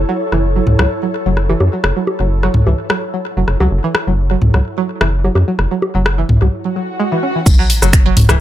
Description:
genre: minimal techno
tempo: 128 BPM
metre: 4/4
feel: swing 53% on 16ths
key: F# minor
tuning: A4 = 440 Hz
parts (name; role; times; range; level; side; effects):
- rubbery square bass; bass; 0.0-8.4 s; F#1 to F#2; -14 LUFS; equal; sidechain pumping
- ethereal airy pad; texture; 0.0-6.5 s; E4 to C#5; -24 LUFS; equal; ensemble chorus, built-in reverb, sidechain pumping
- string-like resonator pluck; riff; 0.1-8.3 s; E3 to C#4; -20 LUFS; right 1 dB; chorus, sidechain pumping, tape echo
- booming analog drum machine; percussion; 0.3-8.4 s; bongos, rim click, toms; -16 LUFS; left 1 dB; digital delay
- swell and sub drop; sound effects; 6.7-8.4 s; none; -18 LUFS; equal; none
- electronic kick drum; drums; 7.5-8.0 s; none; -11 LUFS; equal; none
- house drum kit; drums; 7.5-8.4 s; crash cymbal, finger snaps, hi-hat, shaker; -18 LUFS; equal; low-pass filter on cymbals, low-pass filter on perc, low-pass filter on hats, low-pass filter on snare
room: light reverb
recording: none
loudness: -12 LUFS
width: side -12 dB against mid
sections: 0.0-7.5 A section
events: break 6.5-7.5; swell 6.7-7.5; impact 7.5-8.4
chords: 0.0 F#m; 7.5 F#5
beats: 0.43 0.90 1.37 | 1.84 2.31 2.78 3.25 | 3.71 4.18 4.65 5.12 | 5.59 6.06 6.53 7.00 | 7.46 7.93 8.40

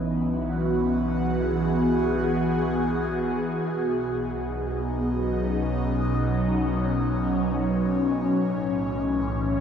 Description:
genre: ambient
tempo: 51 BPM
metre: 4/4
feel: straight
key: B mixolydian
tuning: A4 = 439 Hz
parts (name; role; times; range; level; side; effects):
- airy breathy pad; sustained chords; 0.0-9.6 s; A2 to G#4; -23 LUFS; equal; chorus, phaser
- warm sub bass; bass; 0.0-9.6 s; B1; -33 LUFS; equal; none
room: wet huge ambient reverb, RT60 7.8 s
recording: none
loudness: -23 LUFS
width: side -8 dB against mid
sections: 0.0-9.6 A section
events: none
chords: 0.0 Emaj9/B; 3.7 Badd9; 8.4 Aadd9/B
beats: 0.11 1.29 2.48 | 3.66 4.85 6.02 7.20 | 8.37 9.54

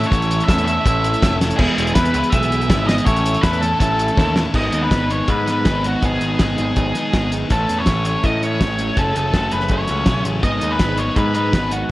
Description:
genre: indie rock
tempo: 163 BPM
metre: 4/4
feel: straight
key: A lydian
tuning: A4 = 440 Hz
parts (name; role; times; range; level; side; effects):
- octave-fuzz lead guitar; melody; 0.0-11.9 s; F#4 to E5; -22 LUFS; equal; distortion
- tonewheel organ; sustained chords; 0.0-4.5 s; G#4 to E6; -32 LUFS; equal; none
- biting overdriven guitar; riff; 0.0-11.9 s; D#3 to A4; -24 LUFS; left 4 dB; none
- twelve-string electric guitar; riff; 0.0-11.9 s; F#2 to G#4; -24 LUFS; right 4 dB; analog chorus
- growling picked electric bass; bass; 0.0-11.8 s; E1 to A2; -22 LUFS; equal; overdrive
- cloth-damped thuddy drum kit; drums; 0.0-11.8 s; crash cymbal, hi-hat, kick drum, snare drum; -20 LUFS; equal; none
room: light reverb, small room ambience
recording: worn, warbling old tape, cassette tape, warbly pitch drift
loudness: -15 LUFS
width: side -17 dB against mid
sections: 0.0-4.5 A section; 4.5-11.9 B section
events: drum fill 4.2-4.5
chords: 0.0 A; 1.6 E; 3.1 A; 4.5 G#m; 7.5 A; 9.0 F#madd9; 10.4 G#m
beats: | 0.11 0.48 0.85 1.22 | 1.58 1.95 2.32 2.69 | 3.06 3.43 3.80 4.17 | 4.54 4.91 5.28 5.65 | 6.02 6.39 6.76 7.13 | 7.50 7.87 8.24 8.61 | 8.97 9.34 9.71 10.07 | 10.44 10.81 11.17 11.54 | 11.90

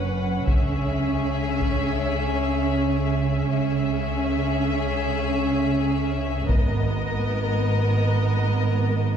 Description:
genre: cinematic, epic orchestral film score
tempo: free time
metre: none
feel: none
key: C# dorian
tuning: A4 = 440 Hz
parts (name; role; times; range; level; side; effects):
- rich studio violin section; melody; 0.0-9.2 s; D#5 to F#5; -32 LUFS; left 4 dB; none
- rich symphonic violin section; second line; 0.0-9.2 s; G#4 to B4; -32 LUFS; left 3 dB; none
- dark symphonic viola section; accompaniment; 0.0-9.2 s; B3 to C#4; -28 LUFS; right 1 dB; none
- rich studio double bass section; bass; 0.0-9.2 s; F#1 to C#2; -26 LUFS; right 2 dB; none
- rich symphonic cello section; bass; 0.0-9.2 s; F#2 to C#3; -27 LUFS; right 1 dB; none
- solo taiko drums; drums; 0.5-1.8, 6.5-7.5 s; none; -24 LUFS; equal; none
room: wet scoring stage reverb, RT60 1.9 s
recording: heard from further back in the room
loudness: -21 LUFS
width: side -8 dB against mid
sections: 0.0-9.2 A section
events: build-up 0.0-9.2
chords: 0.5 C#m; 6.5 G#madd9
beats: free time

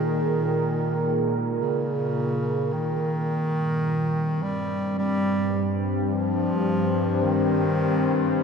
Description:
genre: dark ambient drone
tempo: 53 BPM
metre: 4/4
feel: straight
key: unclear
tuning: A4 = 442 Hz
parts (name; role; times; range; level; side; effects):
- warm bass clarinet; melody; 0.0-8.4 s; Db3 to G3; -26 LUFS; equal; dub echo
- deep dark ambient pad; sustained chords; 0.0-8.4 s; C4 to C5; -27 LUFS; left 1 dB; chorus, built-in reverb
- bowed-like drone; drone; 0.0-8.4 s; G2 to Bb2; -28 LUFS; equal; built-in reverb
room: wet plate reverb, RT60 3.1 s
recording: echo-heavy mix, faint mains hum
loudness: -22 LUFS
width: side -6 dB against mid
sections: 0.0-2.8 A section; 2.8-8.4 B section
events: none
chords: 0.0 Absus2; 2.8 Cm7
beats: 0.45 1.61 | 2.76 3.90 5.03 6.15 | 7.26 8.38

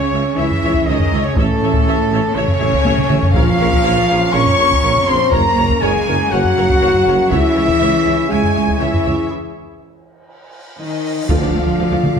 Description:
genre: cinematic, epic orchestral film score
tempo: 121 BPM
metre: 4/4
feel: straight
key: unclear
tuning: A4 = 440 Hz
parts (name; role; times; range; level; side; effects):
- warm symphonic violin section; melody; 0.0-12.2 s; A4 to Db6; -25 LUFS; left 4 dB; none
- clear symphonic violin section; second line; 0.0-12.2 s; A4 to D6; -26 LUFS; left 4 dB; none
- concert flute; second line; 0.0-9.3 s; A4 to Db6; -25 LUFS; left 2 dB; none
- bright trombone section; sustained chords; 0.0-12.2 s; Db3 to D4; -27 LUFS; right 4 dB; none
- chamber organ, flutes; sustained chords; 0.0-12.2 s; Db4 to F5; -26 LUFS; equal; none
- dark French horn section; sustained chords; 0.0-12.2 s; A3 to Db5; -19 LUFS; left 3 dB; none
- clear trumpet section; stabs; 0.0-12.2 s; A4 to Db6; -22 LUFS; right 2 dB; none
- rich studio cello section; bass; 0.0-12.2 s; A2 to Db4; -22 LUFS; right 3 dB; none
- rich symphonic viola section; accompaniment; 0.1-12.2 s; F3 to Fb5; -26 LUFS; equal; none
- mellow tuba; bass; 0.1-12.1 s; Gb1 to D2; -25 LUFS; right 4 dB; none
- rich symphonic double bass section; bass; 0.1-12.2 s; Gb1 to D2; -24 LUFS; right 4 dB; none
- taiko ensemble; drums; 0.5-12.2 s; none; -20 LUFS; equal; none
- timpani; percussion; 3.3-4.0, 11.3-12.0 s; Bb2 to D3; -26 LUFS; left 1 dB; none
- cymbal swell and impact; sound effects; 10.2-12.2 s; none; -32 LUFS; equal; none
room: wet recital hall reverb, RT60 1.5 s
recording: none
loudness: -12 LUFS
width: side -6 dB against mid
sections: 0.0-11.3 A section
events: drum fill 2.9-3.4, 10.8-11.3; break 9.3-11.3; cymbal swell 10.2-11.3; impact 11.3-12.2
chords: 0.0 Dbm; 1.4 A; 3.4 Bbm; 5.3 Gb; 7.3 Dbm; 9.3 N.C.; 11.3 Dm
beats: 0.38 0.87 | 1.37 1.86 2.36 2.85 | 3.35 3.85 4.34 4.84 | 5.33 5.83 6.33 6.82 | 7.32 7.81 8.31 8.80 | 9.30 9.80 10.29 10.79 | 11.28 11.78

